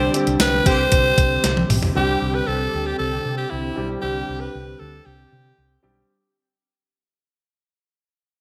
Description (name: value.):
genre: 1980s-style pop.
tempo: 116 BPM.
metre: 4/4.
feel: straight.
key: unclear.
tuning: A4 = 439 Hz.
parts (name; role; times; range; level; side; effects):
raspy alto saxophone; melody; 0.0-5.8 s; E4 to C5; -25 LUFS; equal; none.
warm baby grand piano; accompaniment; 0.0-6.1 s; D3 to G4; -29 LUFS; equal; none.
warm analog pad; sustained chords; 0.0-6.1 s; D3 to G4; -32 LUFS; equal; chorus.
hollow-body short-scale fingered electric bass; bass; 0.0-6.0 s; B1 to C3; -29 LUFS; equal; none.
clean 12-bit digital drum machine; drums; 0.1-1.9 s; hi-hat, kick drum, snare drum, tambourine, toms; -22 LUFS; equal; none.
clear horn section; stabs; 0.7-0.8 s; D3 to G4; -31 LUFS; equal; delay.
room: moderate lush hall reverb, RT60 1.7 s, digital ambience.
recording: bright 1980s-style digital production.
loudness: -20 LUFS.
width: mono.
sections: 0.0-2.0 A section; 2.0-6.1 B section.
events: band accent 0.0-2.0; drum fill 1.4-2.0; fade-out 2.0-6.1.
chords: 0.0 Csus2.